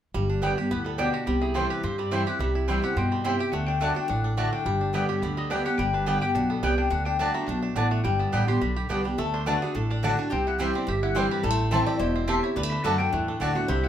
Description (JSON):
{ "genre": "bluegrass", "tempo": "212 BPM", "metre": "4/4", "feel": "straight", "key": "G major", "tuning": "A4 = 441 Hz", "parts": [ { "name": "bluegrass banjo", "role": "melody", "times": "0.1-13.9 s", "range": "G3 to G4", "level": "-34 LUFS", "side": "right 4 dB", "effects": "plate reverb" }, { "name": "picked steel-string acoustic guitar", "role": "accompaniment", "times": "0.1-13.9 s", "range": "G2 to G4", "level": "-28 LUFS", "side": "equal", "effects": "none" }, { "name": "upright bass", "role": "bass", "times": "0.1-13.9 s", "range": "E1 to G2", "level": "-29 LUFS", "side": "equal", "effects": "none" }, { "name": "mandolin", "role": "stabs", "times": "0.4-13.5 s", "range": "A3 to A5", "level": "-28 LUFS", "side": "right 1 dB", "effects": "none" }, { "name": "mandolin", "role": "melody", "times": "0.7-13.9 s", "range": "F#4 to C6", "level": "-31 LUFS", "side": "left 5 dB", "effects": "plate reverb" }, { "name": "lap resonator guitar", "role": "second line", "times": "9.2-13.9 s", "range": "G4 to D5", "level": "-32 LUFS", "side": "left 5 dB", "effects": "none" } ], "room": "wet studio ambience, RT60 0.5 s", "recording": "heard from further back in the room", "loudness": "-23 LUFS", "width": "side -10 dB against mid", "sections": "0.1-9.2 A section; 9.2-13.9 B section", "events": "none", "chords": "0.1 G; 1.3 C; 3.5 D; 4.7 G; 6.9 D; 8.1 G; 9.2 D; 10.3 C; 11.4 Am; 12.6 D", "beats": "| 0.14 0.42 0.71 0.99 | 1.27 1.55 1.84 2.12 | 2.40 2.68 2.96 3.25 | 3.53 3.81 4.09 4.38 | 4.66 4.94 5.22 5.51 | 5.79 6.07 6.36 6.64 | 6.92 7.20 7.49 7.77 | 8.05 8.33 8.62 8.90 | 9.18 9.46 9.74 10.03 | 10.31 10.59 10.87 11.16 | 11.44 11.72 12.00 12.28 | 12.57 12.85 13.13 13.41 | 13.69" }